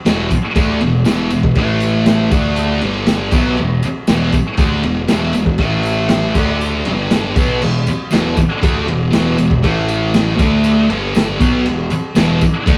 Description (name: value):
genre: garage rock duo or trio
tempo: 119 BPM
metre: 4/4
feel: straight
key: unclear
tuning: A4 = 440 Hz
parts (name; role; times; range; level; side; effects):
- thick fuzz guitar; riff; 0.1-12.8 s; E2 to D4; -18 LUFS; equal; distortion
- growling picked electric bass; bass; 0.1-12.8 s; E1 to D2; -25 LUFS; equal; overdrive
- crunchy breakbeat drum kit; drums; 0.1-12.8 s; crash cymbal, kick drum, ride cymbal, snare drum; -20 LUFS; equal; none
- tambourine; percussion; 0.1-12.8 s; none; -41 LUFS; equal; none
room: wet small room reverb, RT60 0.6 s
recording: rough rehearsal-room recording, tube saturation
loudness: -15 LUFS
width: mono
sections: 0.0-12.8 A section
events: none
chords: 0.0 E5; 1.6 A5; 2.3 D5; 2.8 G5; 3.3 E5; 5.6 A5; 6.4 D5; 6.9 G5; 7.4 E5; 9.6 A5; 10.4 D5; 10.9 G5; 11.4 E5